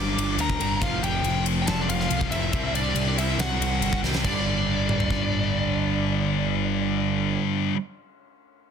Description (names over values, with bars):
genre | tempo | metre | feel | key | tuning
hard rock | 140 BPM | 4/4 | straight | unclear | A4 = 440 Hz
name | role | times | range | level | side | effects
smooth overdriven lead guitar | melody | 0.0-7.4 s | D5 to D6 | -31 LUFS | left 2 dB | digital delay
octave-fuzz lead guitar | second line | 0.0-7.4 s | D4 to D5 | -35 LUFS | right 5 dB | distortion
scooped high-gain guitar | riff | 0.0-7.8 s | F2 to C4 | -28 LUFS | left 12 dB | distortion
sludgy distorted guitar | riff | 0.0-7.8 s | F2 to C4 | -29 LUFS | right 14 dB | overdrive
fuzz picked electric bass | bass | 0.0-7.4 s | F1 to D2 | -28 LUFS | equal | overdrive
huge arena drum kit | drums | 0.2-5.2 s | crash cymbal, kick drum, ride cymbal, snare drum, toms | -29 LUFS | left 1 dB | none
room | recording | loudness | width
light reverb | dense, heavily limited modern master | -22 LUFS | side -7 dB against mid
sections
0.0-4.3 A section; 4.3-7.7 B section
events
drum fill 4.0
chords
0.0 Gm; 0.8 F5; 2.5 C5; 4.3 G5